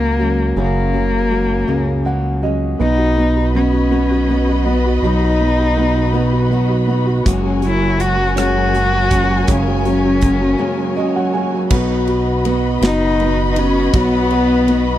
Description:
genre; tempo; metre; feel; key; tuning
six-eight pop ballad; 54 BPM (dotted quarters); 6/8; straight; B major; A4 = 440 Hz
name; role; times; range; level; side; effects
dark cello; melody; 0.0-15.0 s; A#3 to F#4; -18 LUFS; left 2 dB; none
warm upright piano; accompaniment; 0.0-15.0 s; C#3 to G#5; -20 LUFS; right 4 dB; none
picked steel-string acoustic guitar; arpeggios; 0.0-15.0 s; F#2 to F#4; -24 LUFS; left 8 dB; none
chorused synth bass; bass; 0.0-15.0 s; F#1 to C#2; -19 LUFS; equal; none
warm studio string section; sustained chords; 2.8-15.0 s; F#4 to B5; -24 LUFS; left 2 dB; none
modern studio drum kit; drums; 7.3-14.9 s; crash cymbal, hi-hat, kick drum, ride cymbal, rim click, snare drum; -17 LUFS; right 1 dB; none
room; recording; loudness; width
light reverb; dry, close 1970s-style studio recording; -13 LUFS; side -12 dB against mid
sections
0.0-2.8 A section; 2.8-11.7 B section; 11.7-15.0 C section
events
upright piano fill 1.7-2.8, 10.6-11.7; break 10.6-11.7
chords
0.0 F#add9; 2.8 B; 7.3 F#add9; 11.7 B

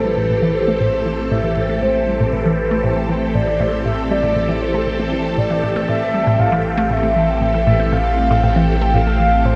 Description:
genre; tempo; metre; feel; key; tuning
ambient, sequencer-driven space music; 118 BPM; 4/4; straight; A minor; A4 = 443 Hz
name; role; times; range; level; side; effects
mellow horn-like synth lead; melody; 0.0-9.6 s; B4 to G5; -22 LUFS; equal; lush chorus, delay
phased string machine; sustained chords; 0.0-9.6 s; E3 to A4; -23 LUFS; equal; ensemble chorus, phaser
resonant blip pluck; riff; 0.0-9.5 s; A2 to A3; -22 LUFS; equal; phaser, delay
warm sub bass; bass; 0.0-9.6 s; A1; -26 LUFS; equal; none
bubbling stepped-filter texture; texture; 1.4-9.6 s; C4; -36 LUFS; equal; none
room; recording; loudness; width
wet lush hall reverb, RT60 2.7 s; dark, warm production; -17 LUFS; mono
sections
0.0-9.6 A section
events
fade-in on sub bass 0.0-9.6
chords
0.0 Am7

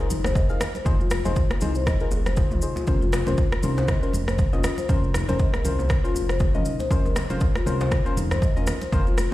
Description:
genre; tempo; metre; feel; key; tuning
afro house; 119 BPM; 4/4; swing 56% on 16ths; unclear; A4 = 443 Hz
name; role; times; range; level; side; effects
deep mellow chord stab; stabs; 0.0-9.0 s; Db4 to F5; -31 LUFS; left 2 dB; chorus, sidechain pumping, tape echo
marimba with soft mallets; arpeggios; 0.1-9.2 s; Eb4 to Eb5; -30 LUFS; left 4 dB; sidechain pumping, tape echo
smooth synth bass; bass; 0.1-9.3 s; F1 to C2; -26 LUFS; equal; sidechain pumping
congas; percussion; 0.1-9.3 s; none; -34 LUFS; right 2 dB; none
maracas; percussion; 0.1-9.3 s; none; -40 LUFS; left 1 dB; none
deep house drum kit; drums; 0.2-9.3 s; rim click, toms; -31 LUFS; right 1 dB; overdrive
djembe; percussion; 0.3-9.3 s; none; -33 LUFS; left 1 dB; none
electronic kick drum; drums; 0.4-9.0 s; none; -23 LUFS; equal; overdrive
room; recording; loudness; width
small room ambience; played on a big sound system in a bare room, stone room reverb; -20 LUFS; side -16 dB against mid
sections
0.0-9.3 A section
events
none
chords
0.0 Fm7; 2.9 Bbmadd9/F

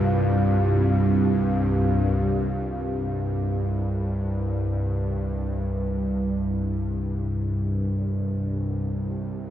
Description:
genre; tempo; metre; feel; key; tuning
dark ambient drone; free time; none; none; unclear; A4 = 440 Hz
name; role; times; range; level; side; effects
deep dark ambient pad; sustained chords; 0.0-2.8 s; C4 to F5; -29 LUFS; equal; chorus, built-in reverb
bowed-like drone; drone; 0.0-9.5 s; C2 to G2; -23 LUFS; equal; built-in reverb
room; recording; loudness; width
wet cathedral reverb, RT60 5.6 s; cassette tape; -22 LUFS; side -11 dB against mid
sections
0.0-2.7 A section; 2.7-9.5 B section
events
none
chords
0.0 C5

